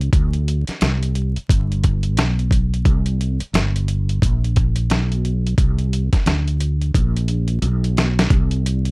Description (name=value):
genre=hip hop, jazz-hop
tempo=88 BPM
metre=4/4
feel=swing 62% on 16ths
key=unclear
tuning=A4 = 437 Hz
part: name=mellow fretless electric bass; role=bass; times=0.0-8.9 s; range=G1 to D2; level=-18 LUFS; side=equal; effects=ensemble chorus
part: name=dusty soul sampler-style drum kit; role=drums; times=0.0-8.9 s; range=hi-hat, kick drum, snare drum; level=-18 LUFS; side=equal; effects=none
room=little or no reverb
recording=vinyl crackle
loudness=-16 LUFS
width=side -29 dB against mid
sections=0.0-8.3 A section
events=drum fill 6.9-8.3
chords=none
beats=| 0.13 0.81 1.49 2.17 | 2.85 3.54 4.22 4.90 | 5.58 6.26 6.95 7.63 | 8.31